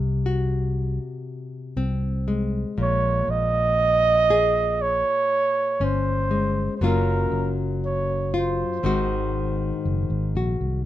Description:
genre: acoustic folk-pop ballad.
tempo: 59 BPM.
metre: 4/4.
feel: straight.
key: unclear.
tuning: A4 = 440 Hz.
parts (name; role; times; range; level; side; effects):
nylon-string guitar; accompaniment; 0.0-10.9 s; Gb2 to Ab4; -27 LUFS; left 4 dB; none.
fingered electric bass; bass; 0.0-10.8 s; Gb1 to C2; -25 LUFS; equal; none.
mellow flugelhorn; melody; 2.8-10.4 s; Bb4 to Eb5; -22 LUFS; right 3 dB; none.
room: light reverb.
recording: minimal, uncompressed stereo recording.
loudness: -20 LUFS.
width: side -13 dB against mid.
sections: 0.0-10.9 A section.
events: none.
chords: 0.0 Ab7/C; 2.8 Bbm7; 6.8 Gbmaj7; 8.8 Ab7.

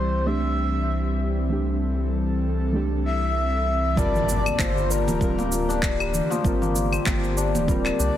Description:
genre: organic downtempo.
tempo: 97 BPM.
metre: 4/4.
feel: swing 56% on 16ths.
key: G dorian.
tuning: A4 = 440 Hz.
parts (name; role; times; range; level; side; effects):
breathy flute-like synth lead; melody; 0.0-8.2 s; Bb4 to E5; -29 LUFS; equal; lush chorus, tape echo.
deep mellow chord stab; accompaniment; 0.0-8.2 s; E3 to Bb4; -30 LUFS; right 3 dB; chorus, sidechain pumping, tape echo.
airy breathy pad; sustained chords; 0.0-8.2 s; D3 to A4; -29 LUFS; equal; chorus, sidechain pumping.
round analog bass; bass; 0.0-8.1 s; D1 to C2; -26 LUFS; equal; tube saturation, sidechain pumping.
quartz singing bowl; texture; 0.0-8.2 s; A5; -37 LUFS; left 2 dB; none.
santur; arpeggios; 4.0-8.2 s; F3 to G4; -27 LUFS; left 6 dB; tape echo.
electronic cabasa, claves and handclaps; drums; 4.0-8.1 s; none; -29 LUFS; equal; none.
electronic kick drum; drums; 4.0-7.8 s; none; -26 LUFS; equal; none.
impact; sound effects; 4.0-6.4 s; none; -32 LUFS; left 1 dB; none.
congas; percussion; 4.1-7.7 s; none; -31 LUFS; right 2 dB; none.
room: moderate lush hall reverb, RT60 2.2 s.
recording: dense, heavily limited modern master.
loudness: -21 LUFS.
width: side -11 dB against mid.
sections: 0.0-4.0 A section; 4.0-8.2 B section.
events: impact 4.0-6.4.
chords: 0.0 C; 4.0 Gmadd9.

